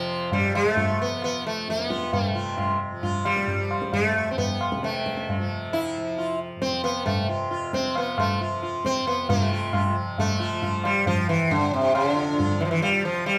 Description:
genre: indian classical, Hindustani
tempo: 134 BPM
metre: 4/4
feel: straight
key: F raga yaman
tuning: A4 = 440 Hz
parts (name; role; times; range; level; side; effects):
- sitar; melody; 0.0-13.4 s; C3 to F4; -26 LUFS; equal; none
- tanpura; drone; 0.0-13.4 s; F2 to F3; -37 LUFS; equal; none
- tabla; percussion; 0.3-13.4 s; none; -30 LUFS; equal; none
room: wet studio reverb, RT60 0.9 s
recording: band playing live in one room, faint mains hum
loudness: -25 LUFS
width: mono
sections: 0.0-9.3 A section; 9.3-13.4 B section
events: none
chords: none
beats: | 0.32 0.77 1.22 1.67 | 2.12 2.57 3.02 3.47 | 3.92 4.37 4.82 5.27 | 5.72 6.17 6.61 7.06 | 7.50 7.95 8.40 8.84 | 9.29 9.73 10.17 10.62 | 11.06 11.50 11.94 12.38 | 12.83 13.27

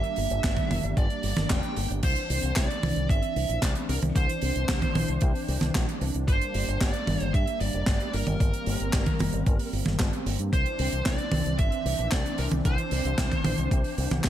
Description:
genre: italo disco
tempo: 113 BPM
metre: 4/4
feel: straight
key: unclear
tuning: A4 = 440 Hz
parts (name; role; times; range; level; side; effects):
- smooth overdriven lead guitar; melody; 0.0-14.3 s; Bb4 to G5; -32 LUFS; right 2 dB; ping-pong delay
- warm analog pad; sustained chords; 0.0-14.3 s; E3 to D4; -34 LUFS; right 1 dB; chorus
- tight funk drum kit; drums; 0.0-14.3 s; crash cymbal, handclaps, hi-hat, snare drum, toms; -30 LUFS; equal; gated reverb
- fingered electric bass with an envelope filter; bass; 0.2-14.3 s; F1 to G2; -30 LUFS; equal; tube saturation
- electronic kick drum; drums; 0.4-14.3 s; none; -26 LUFS; equal; none
room: small room ambience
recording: none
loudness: -24 LUFS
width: side -11 dB against mid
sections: 0.0-2.0 A section; 2.0-14.3 B section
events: none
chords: 0.0 Gm; 2.0 Cadd9; 6.3 Gm; 10.5 Cadd9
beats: 0.44 0.97 1.50 | 2.03 2.56 3.09 3.62 | 4.16 4.69 5.22 5.75 | 6.28 6.81 7.34 7.87 | 8.40 8.94 9.47 10.00 | 10.53 11.06 11.59 12.12 | 12.65 13.18 13.71 14.24

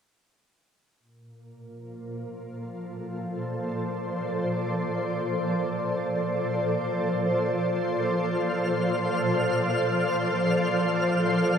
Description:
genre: ambient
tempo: free time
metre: none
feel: none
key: Bb major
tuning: A4 = 439 Hz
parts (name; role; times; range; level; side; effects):
- shimmering ambient pad; sustained chords; 1.7-11.6 s; Bb2 to D5; -25 LUFS; equal; chorus, built-in reverb
- twinkling granular texture; texture; 8.2-11.6 s; F5 to F6; -32 LUFS; equal; built-in reverb
room: wet lush hall reverb, RT60 2.9 s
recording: none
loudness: -24 LUFS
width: side -7 dB against mid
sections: 1.0-11.6 A section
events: none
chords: 1.0 Bbmaj7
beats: free time

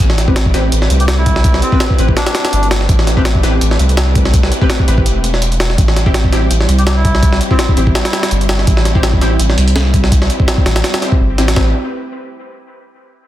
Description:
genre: drum and bass, jungle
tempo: 166 BPM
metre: 4/4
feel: swing 55% on 16ths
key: A minor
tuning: A4 = 438 Hz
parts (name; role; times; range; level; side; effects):
- soft string machine; sustained chords; 0.0-11.7 s; G3 to C5; -22 LUFS; equal; ensemble chorus, vintage 12-bit sampler grit
- soft dub sub bass; bass; 0.0-11.7 s; E1 to C2; -14 LUFS; equal; none
- jungle sampler-style drum kit; drums; 0.0-11.7 s; hi-hat, kick drum, snare drum; -13 LUFS; equal; none
- orchestra-hit-like synth stab; stabs; 0.3-11.7 s; C4 to B4; -21 LUFS; left 2 dB; built-in reverb, dub echo
- melodica; melody; 1.0-2.7, 6.8-8.3 s; C4 to G4; -23 LUFS; equal; vintage 12-bit sampler grit, dub echo
room: digital ambience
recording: dense, heavily limited modern master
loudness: -10 LUFS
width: side -13 dB against mid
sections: 0.0-11.6 A section; 11.6-13.0 B section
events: drop 0.0-11.6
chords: 0.0 Am9; 5.8 C; 11.6 Am9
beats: | 0.00 0.36 0.72 1.08 | 1.44 1.80 2.17 2.53 | 2.89 3.25 3.61 3.97 | 4.33 4.70 5.06 5.42 | 5.78 6.14 6.50 6.87 | 7.23 7.59 7.95 8.31 | 8.67 9.03 9.40 9.76 | 10.12 10.48 10.84 11.20 | 11.56

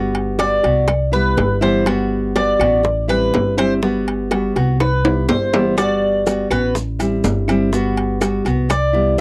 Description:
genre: latin, Cuban son and guajira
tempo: 123 BPM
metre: 4/4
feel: straight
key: G major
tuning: A4 = 443 Hz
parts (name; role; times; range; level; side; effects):
- nylon-string guitar; accompaniment; 0.0-9.2 s; E3 to F#4; -22 LUFS; equal; none
- upright bass; bass; 0.0-9.1 s; G1 to C2; -24 LUFS; equal; none
- timbales; percussion; 0.1-8.9 s; none; -24 LUFS; equal; none
- Cuban tres; arpeggios; 0.4-9.2 s; B4 to D5; -20 LUFS; equal; none
- bongos; percussion; 0.4-9.2 s; none; -27 LUFS; equal; none
- claves; percussion; 0.4-8.9 s; none; -36 LUFS; equal; none
- maracas; percussion; 5.8-8.9 s; none; -37 LUFS; equal; none
room: light reverb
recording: dry, close 1970s-style studio recording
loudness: -17 LUFS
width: mono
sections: 0.0-9.2 A section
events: Cuban tres solo 0.0-9.2; drum fill 4.8-5.8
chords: 0.0 Gmaj7; 0.9 Cmaj7; 1.9 Gmaj7; 2.8 Am7; 3.8 Gmaj7; 4.8 Cmaj7; 5.8 Gmaj7; 6.8 Am7; 7.7 Gmaj7; 8.7 Cmaj7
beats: 0.40 0.89 1.38 | 1.87 2.36 2.85 3.34 | 3.83 4.31 4.80 5.29 | 5.78 6.27 6.75 7.24 | 7.73 8.21 8.70 9.19

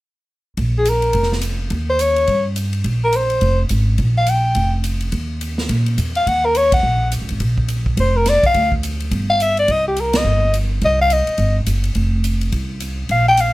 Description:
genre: jazz, small-group swing and bop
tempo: 211 BPM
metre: 4/4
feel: swing 60% on 8ths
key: Bb mixolydian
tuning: A4 = 441 Hz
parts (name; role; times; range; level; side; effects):
- upright bass; bass; 0.6-13.5 s; F1 to Bb2; -19 LUFS; equal; none
- swinging big-band drum kit; drums; 0.6-13.5 s; hi-hat, kick drum, ride cymbal, snare drum; -25 LUFS; equal; none
- growling soprano saxophone; melody; 0.8-13.5 s; G4 to G5; -15 LUFS; left 1 dB; none
room: light reverb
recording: none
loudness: -15 LUFS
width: side -18 dB against mid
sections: 0.6-13.5 A section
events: band accent 6.7, 10.1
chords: 0.6 Bb5; 1.7 Eb7; 2.9 Bb5; 5.1 Eb5; 6.3 Ebm; 7.4 Bb5; 8.5 Dm; 9.1 G5; 9.7 Cm; 12.0 F5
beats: | 0.58 0.87 1.15 1.44 | 1.72 2.00 2.29 2.57 | 2.86 3.14 3.43 3.71 | 4.00 4.28 4.56 4.85 | 5.13 5.42 5.70 5.99 | 6.27 6.55 6.84 7.12 | 7.41 7.69 7.98 8.26 | 8.55 8.83 9.12 9.40 | 9.69 9.97 10.25 10.54 | 10.82 11.11 11.39 11.68 | 11.96 12.25 12.53 12.82 | 13.10 13.39

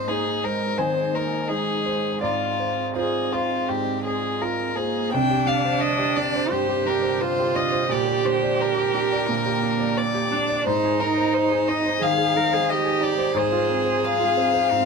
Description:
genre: neoclassical piano and strings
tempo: 87 BPM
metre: 4/4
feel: rubato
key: C minor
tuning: A4 = 439 Hz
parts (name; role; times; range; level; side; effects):
- rich violin; melody; 0.0-14.9 s; F4 to G5; -24 LUFS; left 6 dB; none
- dark cello; second line; 0.0-14.9 s; Ab3 to Bb4; -26 LUFS; right 6 dB; none
- clear concert grand piano; accompaniment; 0.0-14.9 s; C2 to Ab5; -26 LUFS; right 4 dB; none
- dark chamber string section; sustained chords; 0.0-14.9 s; D3 to C5; -34 LUFS; left 1 dB; none
room: light reverb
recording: lossy compression artefacts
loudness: -20 LUFS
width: side -5 dB against mid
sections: 0.0-5.1 A section; 5.1-14.9 B section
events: none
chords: 0.0 Ab; 2.2 Fm/Ab; 5.1 Csus2; 7.9 Gm/Bb; 10.7 Ab; 13.4 Fm/Ab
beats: 0.08 0.79 1.49 | 2.22 2.95 3.68 4.41 | 5.12 5.81 6.52 7.21 | 7.90 8.59 9.28 9.97 | 10.66 11.34 12.02 12.69 | 13.37 14.04 14.71

